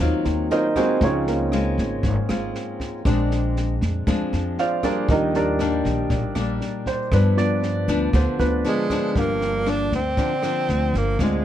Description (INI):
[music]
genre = bossa nova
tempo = 118 BPM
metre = 4/4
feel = straight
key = unclear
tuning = A4 = 439 Hz
[part]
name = nylon-string guitar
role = accompaniment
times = 0.0-11.4 s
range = G2 to F4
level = -26 LUFS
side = left 4 dB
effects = none
[part]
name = warm grand piano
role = accompaniment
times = 0.0-11.4 s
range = F3 to F5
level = -24 LUFS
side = right 2 dB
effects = none
[part]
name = upright bass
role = bass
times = 0.0-11.4 s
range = G1 to G2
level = -23 LUFS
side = equal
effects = none
[part]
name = compact cocktail drum kit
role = drums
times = 0.2-11.3 s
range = kick drum, rim click, snare drum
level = -28 LUFS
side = equal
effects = none
[part]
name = breathy tenor saxophone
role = melody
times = 8.7-11.4 s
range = Ab3 to D4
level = -23 LUFS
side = right 2 dB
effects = none
[sound]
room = little or no reverb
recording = dark, warm production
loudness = -19 LUFS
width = side -11 dB against mid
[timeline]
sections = 0.0-9.2 A section; 9.2-11.4 B section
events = grand piano solo 0.0-9.2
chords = 0.0 Ab13; 1.0 Dbmaj7; 3.1 Bb9; 5.1 Ebmaj7; 7.1 G7; 9.2 Gm7